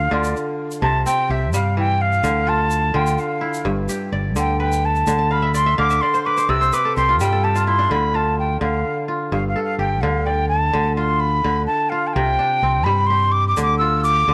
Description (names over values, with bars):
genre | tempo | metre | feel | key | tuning
west african traditional, West African string and xylophone music | 85 BPM (dotted quarters) | 12/8 | straight | D dorian | A4 = 441 Hz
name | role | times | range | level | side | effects
breathy concert flute | melody | 0.0-14.3 s | D5 to E6 | -22 LUFS | equal | slapback echo
kora | arpeggios | 0.0-14.3 s | G2 to A5 | -25 LUFS | equal | none
fingered electric bass | bass | 0.0-14.3 s | G1 to G2 | -24 LUFS | equal | none
tube shaker | percussion | 0.2-7.7, 13.6-14.2 s | none | -38 LUFS | equal | none
room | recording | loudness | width
light reverb, studio reverb | none | -19 LUFS | mono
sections
0.0-7.9 A section; 7.9-14.3 B section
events
flute solo 0.0-7.9; kora fill 5.2-7.9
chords
0.0 Dm; 0.8 C; 2.2 Dm; 3.7 G; 5.1 Dm13; 6.5 C5; 7.9 Dm; 9.3 G5; 10.7 Dm; 12.2 C5; 13.6 Dm